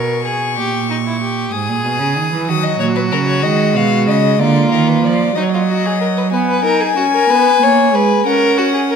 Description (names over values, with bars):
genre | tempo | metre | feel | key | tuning
classical, baroque-style fugue for string quartet | 62 BPM (dotted quarters) | 6/8 | straight | unclear | A4 = 442 Hz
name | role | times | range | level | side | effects
rich violin | melody | 0.0-9.0 s | A#4 to D#6 | -18 LUFS | left 7 dB | none
rich violin | second line | 0.0-9.0 s | D#4 to C#5 | -18 LUFS | left 1 dB | none
rich cello | bass | 0.0-6.3 s | G#2 to F#3 | -18 LUFS | right 5 dB | none
warm viola | accompaniment | 2.5-9.0 s | F#3 to D#4 | -17 LUFS | right 4 dB | none
room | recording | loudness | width
moderate recital hall reverb, RT60 1.4 s | none | -12 LUFS | side -6 dB against mid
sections
0.0-6.3 A section; 6.3-9.0 B section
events
none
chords
0.0 G#madd11/B; 0.6 D#7/A# (rootless); 1.5 G#m; 2.5 D#m; 3.4 Fm7b5; 4.4 A#/D; 5.4 D#m/F#; 6.3 B; 7.3 C#5; 8.3 F#/C#